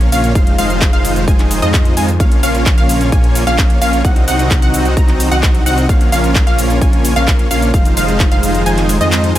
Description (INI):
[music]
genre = EDM, festival progressive house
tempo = 130 BPM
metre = 4/4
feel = straight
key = Bb minor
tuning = A4 = 440 Hz
[part]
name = lush unison pad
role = sustained chords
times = 0.0-9.4 s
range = Db3 to C4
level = -23 LUFS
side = equal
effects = chorus, vintage 12-bit sampler grit, sidechain pumping
[part]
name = wide unison pluck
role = arpeggios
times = 0.0-9.4 s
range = Eb5 to Bb5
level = -20 LUFS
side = equal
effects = sidechain pumping, tape echo
[part]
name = dense compressed supersaw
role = riff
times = 0.0-9.4 s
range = Ab3 to Ab5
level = -17 LUFS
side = equal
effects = sidechain pumping, tape echo
[part]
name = wide detuned saw bass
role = bass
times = 0.0-9.4 s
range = F1 to F2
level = -17 LUFS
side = equal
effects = chorus, sidechain pumping
[part]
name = big-room dance drum kit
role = drums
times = 0.0-9.4 s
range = handclaps, hi-hat, shaker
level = -20 LUFS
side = equal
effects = none
[part]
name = electronic kick drum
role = drums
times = 0.4-8.3 s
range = none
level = -12 LUFS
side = equal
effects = none
[sound]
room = light reverb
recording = none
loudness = -10 LUFS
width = side -13 dB against mid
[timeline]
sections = 0.0-9.4 A section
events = kick drops out 8.7-9.4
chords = 0.4 Fm7; 2.2 Bbm; 4.0 Cdim; 5.9 Bbm; 7.7 Fm7